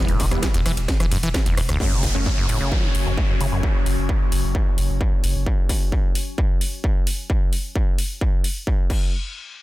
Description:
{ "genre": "driving peak-time techno", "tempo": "131 BPM", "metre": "4/4", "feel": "straight", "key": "F# phrygian", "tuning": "A4 = 441 Hz", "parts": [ { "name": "acid bass, saw", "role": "riff", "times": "0.0-3.6 s", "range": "E1 to A3", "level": "-26 LUFS", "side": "equal", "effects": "sidechain pumping, tape echo" }, { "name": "rave stab", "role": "stabs", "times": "0.0-2.3 s", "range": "E3 to C#4", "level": "-31 LUFS", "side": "right 1 dB", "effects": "chorus, built-in reverb, sidechain pumping, tape echo" }, { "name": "saturated sub bass", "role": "bass", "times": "0.1-5.5 s", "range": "E1 to F#1", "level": "-25 LUFS", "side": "equal", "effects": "tube saturation, sidechain pumping, low-pass filter" }, { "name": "techno drum kit", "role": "drums", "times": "0.1-9.0 s", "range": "crash cymbal, hi-hat, ride cymbal, rim click, snare drum", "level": "-29 LUFS", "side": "left 1 dB", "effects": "sidechain pumping on hats, sidechain pumping on cymbals" }, { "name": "electronic kick drum", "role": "drums", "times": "0.2-9.0 s", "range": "none", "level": "-21 LUFS", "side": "equal", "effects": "distortion" }, { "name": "metallic inharmonic drone", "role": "drone", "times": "2.4-5.5 s", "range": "F#3 to C#4", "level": "-31 LUFS", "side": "left 5 dB", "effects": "chorus, built-in reverb, sidechain pumping" }, { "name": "downlifter", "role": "sound effects", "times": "1.8-5.5 s", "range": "none", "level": "-30 LUFS", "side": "equal", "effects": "none" } ], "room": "digital ambience", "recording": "dense, heavily limited modern master", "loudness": "-19 LUFS", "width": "side -17 dB against mid", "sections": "0.0-1.8 A section; 1.8-9.1 B section", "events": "drop 0.0-1.8; filter sweep on acid bass 1.8-3.6", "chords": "0.0 Em; 1.8 F#5; 8.9 N.C." }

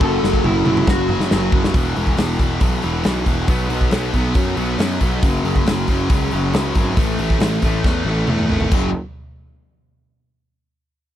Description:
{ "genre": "classic rock", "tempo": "138 BPM", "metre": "4/4", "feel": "straight", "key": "F# minor", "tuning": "A4 = 439 Hz", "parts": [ { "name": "lead guitar through a small cranked amp", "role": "melody", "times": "0.0-1.5 s", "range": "E4 to A4", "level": "-22 LUFS", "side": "left 1 dB", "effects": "overdrive, tape echo" }, { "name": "biting overdriven guitar", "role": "riff", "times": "0.0-8.9 s", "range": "E2 to B3", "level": "-21 LUFS", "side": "equal", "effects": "none" }, { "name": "fuzz picked electric bass", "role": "bass", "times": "0.0-8.9 s", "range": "E1 to F#2", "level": "-21 LUFS", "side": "equal", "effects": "overdrive" }, { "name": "big rock drum kit", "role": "drums", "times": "0.0-8.8 s", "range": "crash cymbal, hi-hat, kick drum, snare drum, toms", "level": "-19 LUFS", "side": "equal", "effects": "none" } ], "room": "small room ambience", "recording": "dry, close 1970s-style studio recording", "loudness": "-16 LUFS", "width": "side -11 dB against mid", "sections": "0.0-1.8 A section; 1.8-8.7 B section; 8.7-10.5 C section", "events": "drum fill 0.0-1.8, 7.8-8.7", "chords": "0.0 F#m; 1.8 E5; 3.5 B5; 5.2 F#5; 7.0 A5; 8.7 F#5" }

